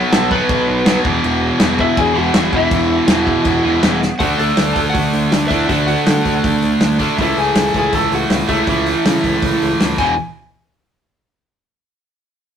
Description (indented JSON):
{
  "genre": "punk rock",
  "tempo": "161 BPM",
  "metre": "4/4",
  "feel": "straight",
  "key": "unclear",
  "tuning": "A4 = 441 Hz",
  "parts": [
    { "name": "lightly driven lead guitar", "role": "melody", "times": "0.0-10.2 s", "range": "E4 to B5", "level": "-19 LUFS", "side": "right 1 dB", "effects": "none" },
    { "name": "distorted electric guitar", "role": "riff", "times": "0.0-10.1 s", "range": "E2 to D4", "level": "-17 LUFS", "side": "equal", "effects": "overdrive" },
    { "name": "overdriven picked electric bass", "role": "bass", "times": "0.1-10.2 s", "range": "E1 to D3", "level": "-22 LUFS", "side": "equal", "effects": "none" },
    { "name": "loose indie drum kit", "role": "drums", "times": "0.1-10.1 s", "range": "crash cymbal, hi-hat, kick drum, snare drum", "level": "-19 LUFS", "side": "equal", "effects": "none" }
  ],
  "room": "light reverb",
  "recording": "rough rehearsal-room recording, warm saturation",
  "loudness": "-13 LUFS",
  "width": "side -8 dB against mid",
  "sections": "0.0-4.2 A section; 4.2-10.2 B section; 10.2-11.7 C section",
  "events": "drum fill 4.0, 10.0",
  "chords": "0.0 B5; 1.0 E5; 4.2 D; 7.2 A/C#; 10.0 E; 10.2 N.C."
}